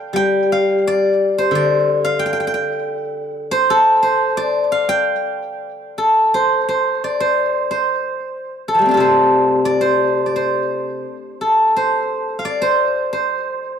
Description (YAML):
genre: chinese traditional, Chinese solo plucked strings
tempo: 83-94 BPM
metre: 2/4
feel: rubato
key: unclear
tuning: A4 = 440 Hz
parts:
  - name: steel-string zither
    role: solo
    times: 0.0-13.8 s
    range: C3 to G5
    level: -15 LUFS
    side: equal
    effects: tape echo
room: little or no reverb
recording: dry, close 1970s-style studio recording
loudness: -15 LUFS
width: side -8 dB against mid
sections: 0.0-5.6 A section; 5.6-13.8 B section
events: none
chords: none